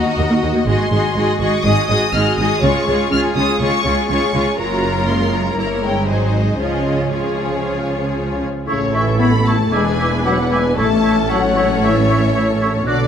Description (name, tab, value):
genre	classical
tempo	114-123 BPM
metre	4/4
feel	straight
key	Db major, A major from 8.7 s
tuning	A4 = 440 Hz
part	warm symphonic violin section	melody	0.0-13.1 s	Db5 to F6	-23 LUFS	left 3 dB	none
part	warm symphonic violin section	second line	0.0-13.1 s	Gb4 to Eb5	-21 LUFS	left 3 dB	none
part	clear symphonic viola section	accompaniment	0.0-13.1 s	F3 to B4	-22 LUFS	equal	none
part	rich symphonic cello section	bass	0.1-13.1 s	Eb2 to Db3	-22 LUFS	right 2 dB	none
part	warm symphonic double bass section	bass	0.2-13.1 s	E1 to Eb2	-21 LUFS	right 2 dB	none
part	clear oboe	second line	8.7-13.0 s	E4 to F#4	-24 LUFS	right 2 dB	none
part	large flute ensemble	second line	8.7-12.9 s	C#6 to D6	-24 LUFS	right 1 dB	none
part	warm French horn section	sustained chords	8.7-13.1 s	C#3 to B3	-19 LUFS	left 4 dB	none
room	moderate concert hall reverb, RT60 2.3 s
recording	none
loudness	-14 LUFS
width	side -8 dB against mid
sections	0.0-8.7 A section; 8.7-13.1 B section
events	none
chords	0.0 Ebm; 0.7 Ab7; 2.6 Db; 4.6 Gbmaj7; 5.6 Gdim7; 6.1 Ab7; 6.6 Db; 8.7 A; 9.7 E7; 10.8 A